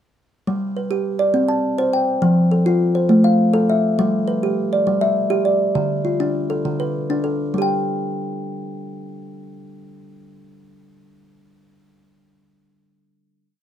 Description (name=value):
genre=southern african traditional, mbira-style interlocking cycle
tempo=135 BPM (dotted quarters)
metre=12/8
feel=straight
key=G mixolydian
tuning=A4 = 441 Hz
part: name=kalimba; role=solo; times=0.5-12.1 s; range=D3 to A5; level=-17 LUFS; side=equal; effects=none
room=moderate studio reverb, RT60 0.5 s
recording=dark, warm production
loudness=-17 LUFS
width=side -10 dB against mid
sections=0.5-7.5 A section; 7.5-11.1 final note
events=none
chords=0.5 G; 1.3 C5; 2.2 F; 3.1 Am; 4.0 G; 5.8 Dm; 7.5 N.C.